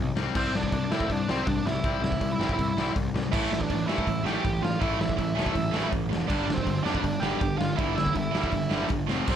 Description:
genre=punk rock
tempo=161 BPM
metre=4/4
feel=straight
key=unclear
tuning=A4 = 440 Hz
part: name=distorted electric guitar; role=riff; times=0.0-9.4 s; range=F2 to C4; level=-31 LUFS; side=left 9 dB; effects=distortion
part: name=fuzz picked electric bass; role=bass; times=0.0-9.4 s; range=E1 to A2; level=-33 LUFS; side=equal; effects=overdrive
part: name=raw garage drum kit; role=drums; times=0.2-9.4 s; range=crash cymbal, hi-hat, kick drum, snare drum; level=-29 LUFS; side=equal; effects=none
part: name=bluesy overdriven lead guitar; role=melody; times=0.4-9.4 s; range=C4 to G5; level=-30 LUFS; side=right 3 dB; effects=distortion
part: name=tight distorted guitar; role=riff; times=3.3-9.4 s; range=G2 to C4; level=-31 LUFS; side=right 14 dB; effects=distortion
room=little or no reverb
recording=none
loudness=-24 LUFS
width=side -9 dB against mid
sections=0.0-9.4 A section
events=none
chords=0.2 C; 3.3 A5; 6.3 G5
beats=| 0.35 0.72 1.09 1.47 | 1.84 2.21 2.58 2.95 | 3.32 3.70 4.07 4.44 | 4.81 5.18 5.56 5.93 | 6.30 6.67 7.05 7.42 | 7.79 8.16 8.54 8.91 | 9.28

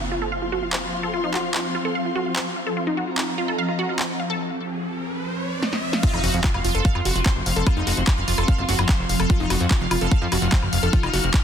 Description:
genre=psychedelic trance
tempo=147 BPM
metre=4/4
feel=straight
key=unclear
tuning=A4 = 441 Hz
part: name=swarming drone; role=sustained chords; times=0.0-11.4 s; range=F3 to Eb4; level=-29 LUFS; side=equal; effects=built-in reverb, sidechain pumping
part: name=wide unison pluck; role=riff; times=0.0-11.4 s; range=Eb4 to F5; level=-26 LUFS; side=moving between left 4 dB and right 5 dB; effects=auto-pan, cassette tape, sidechain pumping, tape echo
part: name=impact and riser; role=sound effects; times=0.0-7.7 s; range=none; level=-31 LUFS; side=equal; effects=none
part: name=dark studio string section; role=texture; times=0.0-11.4 s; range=C4 to F6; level=-31 LUFS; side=left 2 dB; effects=sidechain pumping
part: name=techno drum kit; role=drums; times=0.7-11.4 s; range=crash cymbal, handclaps, hi-hat, snare drum, woodblock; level=-27 LUFS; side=left 1 dB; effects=overdrive, studio reverb
part: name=electronic kick drum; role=drums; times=6.0-11.4 s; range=none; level=-18 LUFS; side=equal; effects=studio reverb
part: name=fat analog bass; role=bass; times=6.1-11.3 s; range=F1 to F2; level=-23 LUFS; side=equal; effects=none
room=light reverb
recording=dense, heavily limited modern master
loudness=-20 LUFS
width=side -8 dB against mid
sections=0.0-6.0 A section; 6.0-11.4 B section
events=impact 0.0-1.1, 6.0-7.7; filter sweep on synth arpeggio sound 0.0-6.0; riser 4.3-6.0; break 4.4-6.0; drum fill 5.6-6.0; drop 6.0-11.4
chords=0.0 F5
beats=0.32 0.73 | 1.14 1.54 1.95 2.36 | 2.77 3.18 3.58 3.99 | 4.40 4.81 5.22 5.62 | 6.03 6.44 6.85 7.26 | 7.67 8.07 8.48 8.89 | 9.30 9.71 10.12 10.52 | 10.93 11.34

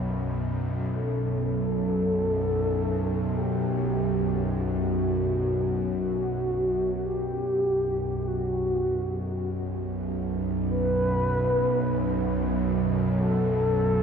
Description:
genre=dark ambient drone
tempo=49 BPM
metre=4/4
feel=straight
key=unclear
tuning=A4 = 440 Hz
part: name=bowed-like drone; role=drone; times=0.0-14.0 s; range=B1 to F#2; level=-26 LUFS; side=right 1 dB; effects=built-in reverb
part: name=bronze singing bowl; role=texture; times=0.0-0.9 s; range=B5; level=-53 LUFS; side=equal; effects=none
part: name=mellow horn-like synth lead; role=melody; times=0.9-14.0 s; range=F#4 to B4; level=-28 LUFS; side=left 1 dB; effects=chorus, ping-pong delay
room=moderate huge ambient reverb, RT60 8.6 s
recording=nothing above 10.7 kHz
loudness=-24 LUFS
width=side -6 dB against mid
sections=0.9-14.0 A section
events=none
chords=0.0 B5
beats=| 0.93 2.15 3.37 4.60 | 5.82 7.05 8.27 9.50 | 10.72 11.95 13.17

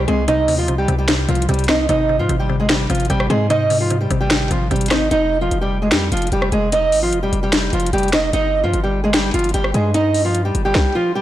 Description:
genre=hip hop, trap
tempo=149 BPM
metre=4/4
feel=half-time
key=unclear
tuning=A4 = 440 Hz
part: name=fingerpicked old ladder-braced acoustic guitar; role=melody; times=0.0-11.2 s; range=F3 to Eb5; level=-18 LUFS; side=right 1 dB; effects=none
part: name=mallet-like synth pluck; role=accompaniment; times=0.0-5.1 s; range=C3 to C4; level=-22 LUFS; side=left 1 dB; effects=chorus
part: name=hard-hitting 808-style bass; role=bass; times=0.0-10.7 s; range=F1 to Ab2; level=-21 LUFS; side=equal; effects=none
part: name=trap drum kit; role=drums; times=0.1-10.8 s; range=finger snaps, hi-hat, kick drum, rim click, snare drum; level=-21 LUFS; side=left 1 dB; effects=vintage 12-bit sampler grit
room=moderate recital hall reverb, RT60 1.5 s, digital ambience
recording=blown-out, overdriven recording, overdrive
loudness=-15 LUFS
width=side -13 dB against mid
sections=0.0-11.2 A section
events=none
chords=0.0 Cm; 1.9 Ab; 5.1 Fsus2; 8.3 G5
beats=| 0.28 0.68 1.08 1.49 | 1.89 2.29 2.69 3.10 | 3.50 3.90 4.31 4.71 | 5.11 5.51 5.92 6.32 | 6.72 7.12 7.53 7.93 | 8.33 8.74 9.14 9.54 | 9.94 10.35 10.75 11.15

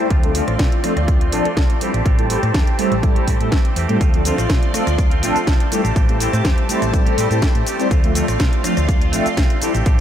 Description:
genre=filtered disco house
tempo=123 BPM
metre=4/4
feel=straight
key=D minor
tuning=A4 = 440 Hz
part: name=mellow synth brass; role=accompaniment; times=0.0-9.7 s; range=F3 to C5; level=-21 LUFS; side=equal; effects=chorus, phaser, sidechain pumping, low-pass filter
part: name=string machine, full ensemble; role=sustained chords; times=0.0-10.0 s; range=F4 to C6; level=-26 LUFS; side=left 1 dB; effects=ensemble chorus, sidechain pumping, low-pass filter
part: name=direct-recorded clean electric guitar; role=riff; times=0.0-10.0 s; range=E3 to G4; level=-27 LUFS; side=right 5 dB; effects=vintage 12-bit sampler grit, sidechain pumping, low-pass filter
part: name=hollow-body short-scale fingered electric bass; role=bass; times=0.1-10.0 s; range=A1 to B2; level=-22 LUFS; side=equal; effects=sidechain pumping, low-pass filter
part: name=electronic kick drum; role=drums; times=0.1-10.0 s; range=none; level=-16 LUFS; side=equal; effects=overdrive
part: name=house drum kit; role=drums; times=0.1-10.0 s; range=hi-hat, rim click, shaker, snare drum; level=-26 LUFS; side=equal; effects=overdrive
room=moderate cathedral reverb, RT60 6.2 s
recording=dreamy mix soaked in reverb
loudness=-15 LUFS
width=side -10 dB against mid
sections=0.0-10.0 A section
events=filter sweep 0.0-10.0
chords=0.1 Dm7; 1.8 Am7; 4.0 Dm7; 5.7 Am7; 7.9 Dm7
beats=| 0.11 0.59 1.08 1.57 | 2.06 2.54 3.03 3.52 | 4.01 4.50 4.98 5.47 | 5.96 6.45 6.93 7.42 | 7.91 8.40 8.89 9.37 | 9.86

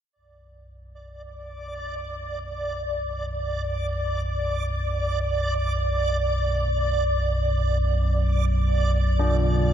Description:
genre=dark ambient drone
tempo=free time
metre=none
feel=none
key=B minor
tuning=A4 = 439 Hz
part: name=backwards swelling texture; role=texture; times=1.2-9.7 s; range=D5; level=-27 LUFS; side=right 1 dB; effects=built-in reverb
part: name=deep rumbling drone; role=drone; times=1.1-9.7 s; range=B1 to F#2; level=-24 LUFS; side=equal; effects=built-in reverb, wide subtle chorus
part: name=old church bells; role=arpeggios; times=9.2-9.7 s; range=D4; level=-26 LUFS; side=left 1 dB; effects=none
room=moderate huge ambient reverb, RT60 8.8 s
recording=cassette tape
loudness=-22 LUFS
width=side -10 dB against mid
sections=0.1-9.7 A section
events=none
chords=0.1 Bm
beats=free time

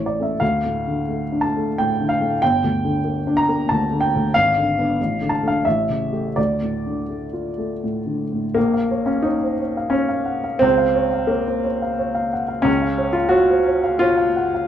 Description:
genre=classical, romantic character piece for solo piano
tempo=81-95 BPM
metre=3/4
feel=rubato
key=D minor, Bb minor from 8.6 s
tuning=A4 = 439 Hz
part: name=warm upright piano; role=solo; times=0.0-14.7 s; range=G1 to Bb5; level=-18 LUFS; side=equal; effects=none
room=moderate large studio reverb, RT60 0.9 s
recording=dark, warm production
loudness=-18 LUFS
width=side -10 dB against mid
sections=0.0-8.6 A section; 8.6-14.7 B section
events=none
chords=0.4 Dm; 2.4 Gm; 4.3 G#dim7; 5.0 Dm/A; 5.7 A7; 6.4 Dm; 8.6 Bbm; 10.6 Bbm/Db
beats=| 0.41 1.08 1.75 | 2.41 3.06 3.71 | 4.35 4.98 5.65 | 6.37 7.10 7.83 | 8.56 9.26 9.94 | 10.64 11.32 12.00 | 12.67 13.34 14.02

